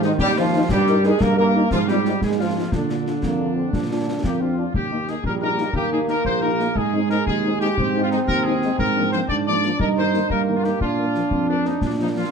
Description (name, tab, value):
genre	military-style march for wind band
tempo	119 BPM (dotted quarters)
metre	6/8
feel	straight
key	Eb major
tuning	A4 = 438 Hz
part	bright trumpet section	melody	0.0-12.3 s	D4 to D5	-26 LUFS	left 3 dB	none
part	dark French horn section	accompaniment	0.0-12.2 s	Eb3 to C5	-27 LUFS	left 5 dB	none
part	warm trombone section	sustained chords	0.0-4.5 s	D3 to Bb3	-22 LUFS	right 1 dB	none
part	warm tuba	bass	0.0-12.2 s	Bb1 to Bb2	-23 LUFS	right 4 dB	none
part	concert snare drum, concert bass drum and clash cymbals	drums	0.0-12.3 s	none	-28 LUFS	left 2 dB	none
part	clear euphonium	second line	3.2-12.3 s	G3 to Eb4	-24 LUFS	right 3 dB	none
room	moderate large studio reverb, RT60 1.2 s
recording	dark, warm production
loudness	-18 LUFS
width	side -6 dB against mid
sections	0.0-4.7 A section; 4.7-12.3 A section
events	none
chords	0.0 Ab; 0.7 Eb/G; 1.7 Fm7/Ab; 2.7 Bb; 4.7 Eb; 6.8 Ab; 8.8 Bb7/Ab; 9.8 Eb/G; 10.8 Bb